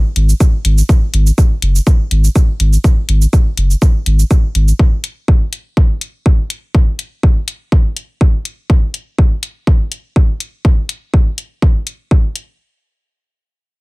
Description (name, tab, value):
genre	minimal techno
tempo	123 BPM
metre	4/4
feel	swing 53% on 16ths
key	unclear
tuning	A4 = 439 Hz
part	saturated sub bass	bass	0.2-4.7 s	F#1 to G#1	-10 LUFS	equal	sidechain pumping
part	electronic hi-hat and cabasa	drums	0.2-12.5 s	none	-23 LUFS	left 1 dB	none
part	electronic kick drum	drums	0.4-12.2 s	none	-10 LUFS	equal	none
room	little or no reverb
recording	none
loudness	-11 LUFS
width	side -24 dB against mid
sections	0.0-12.6 A section; 12.6-13.8 B section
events	none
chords	none